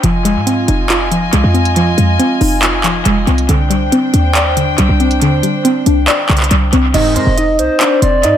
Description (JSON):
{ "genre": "hip hop, trap", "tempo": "139 BPM", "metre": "4/4", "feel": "half-time", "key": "unclear", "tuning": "A4 = 439 Hz", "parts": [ { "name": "soft round pluck", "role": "accompaniment", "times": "0.0-6.9 s", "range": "D3 to D5", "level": "-15 LUFS", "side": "left 2 dB", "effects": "chorus" }, { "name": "warm chamber string section", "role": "sustained chords", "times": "0.0-6.9 s", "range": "D4 to Ab5", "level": "-18 LUFS", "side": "equal", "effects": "none" }, { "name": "short 808-style bass", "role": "bass", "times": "0.0-8.3 s", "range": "F1 to Ab2", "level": "-14 LUFS", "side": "right 1 dB", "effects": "none" }, { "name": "trap drum kit", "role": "drums", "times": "0.0-8.3 s", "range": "crash cymbal, handclaps, hi-hat", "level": "-18 LUFS", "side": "right 1 dB", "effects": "analog delay" }, { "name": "soft electric-piano-like synth keys", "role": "melody", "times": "6.9-8.4 s", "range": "C4 to Eb5", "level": "-14 LUFS", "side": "right 1 dB", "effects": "chorus, analog delay" }, { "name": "chorused polysynth", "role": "stabs", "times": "6.9-7.2 s", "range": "Ab2 to Eb3", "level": "-19 LUFS", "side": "right 2 dB", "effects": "none" }, { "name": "hollow clarinet-like synth lead", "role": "second line", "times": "7.2-8.4 s", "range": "C5 to Eb5", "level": "-15 LUFS", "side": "left 2 dB", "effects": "chorus, analog delay" } ], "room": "light reverb, digital ambience", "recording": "echo-heavy mix", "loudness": "-10 LUFS", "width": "side -10 dB against mid", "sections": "0.0-6.9 A section; 6.9-8.4 B section", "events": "none", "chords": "0.0 Fm7; 3.5 Csus2; 6.9 Fm7", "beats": "| 0.04 0.47 0.90 1.33 | 1.76 2.19 2.63 3.06 | 3.49 3.92 4.35 4.78 | 5.21 5.65 6.08 6.51 | 6.94 7.37 7.80 8.24" }